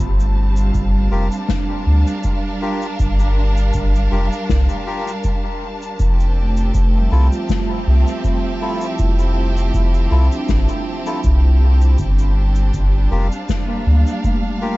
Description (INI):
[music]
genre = ambient dub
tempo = 80 BPM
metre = 4/4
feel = swing 54% on 16ths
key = G dorian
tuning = A4 = 440 Hz
[part]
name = clear studio string section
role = sustained chords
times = 0.0-14.8 s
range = F3 to A5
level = -26 LUFS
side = equal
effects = none
[part]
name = vibraphone with medium mallets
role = arpeggios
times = 0.0-14.8 s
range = G3 to A5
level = -26 LUFS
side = right 3 dB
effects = tape echo
[part]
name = soft dub sub bass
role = bass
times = 0.0-14.0 s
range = F1 to D2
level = -14 LUFS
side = equal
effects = none
[part]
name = cabasa and snare drum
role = drums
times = 0.0-14.4 s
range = none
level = -28 LUFS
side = left 6 dB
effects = dub echo
[part]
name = electronic kick drum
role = drums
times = 0.7-14.4 s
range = none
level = -22 LUFS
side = equal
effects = none
[part]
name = melodica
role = stabs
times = 1.1-14.8 s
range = E4 to Bb4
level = -30 LUFS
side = left 3 dB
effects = dub echo
[sound]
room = studio reverb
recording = dark, warm production, nothing above 7.8 kHz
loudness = -15 LUFS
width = side -19 dB against mid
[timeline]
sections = 0.0-14.8 A section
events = none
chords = 0.0 Gm7; 6.0 Fmaj7